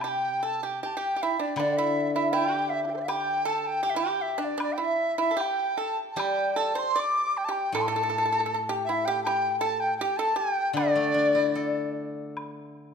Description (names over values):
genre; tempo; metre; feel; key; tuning
chinese traditional, Chinese chamber ensemble; 78 BPM; 2/4; rubato; D shang mode; A4 = 441 Hz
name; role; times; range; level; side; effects
bright large dizi; melody; 0.0-11.9 s; D4 to D6; -29 LUFS; right 3 dB; none
mellow xiao; second line; 0.0-11.9 s; D5 to D6; -30 LUFS; left 7 dB; none
pipa; second line; 0.0-11.9 s; D4 to D5; -31 LUFS; right 5 dB; none
steel-string zither; accompaniment; 0.0-3.8, 6.2-12.9 s; A2 to A4; -30 LUFS; left 2 dB; none
woodblock; percussion; 0.0-12.5 s; none; -37 LUFS; left 1 dB; none
room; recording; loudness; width
moderate scoring stage reverb, RT60 1.8 s; minimal, uncompressed stereo recording; -24 LUFS; side -6 dB against mid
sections
0.0-12.4 A section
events
none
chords
none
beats
| 0.02 0.80 | 1.57 2.32 | 3.07 3.83 | 4.60 5.38 | 6.18 6.96 | 7.75 8.51 | 9.26 10.01 | 10.78 11.56 | 12.37